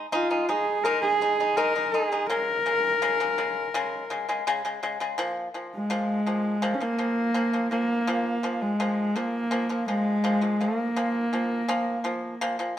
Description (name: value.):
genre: mongolian traditional, Mongolian folk.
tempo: 83 BPM.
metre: 4/4.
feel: straight.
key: Bb yu mode.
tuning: A4 = 440 Hz.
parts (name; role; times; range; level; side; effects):
pipa; arpeggios; 0.0-12.7 s; Bb2 to Eb4; -29 LUFS; left 1 dB; none.
warm horsehead fiddle; melody; 0.1-12.5 s; Ab3 to Bb4; -25 LUFS; equal; none.
room: wet stone room reverb, RT60 1.2 s.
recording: band playing live in one room.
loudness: -24 LUFS.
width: side -11 dB against mid.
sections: 0.0-5.2 A section; 5.2-12.8 B section.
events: none.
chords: 0.0 Ab5; 2.3 Db5; 5.2 Bb5.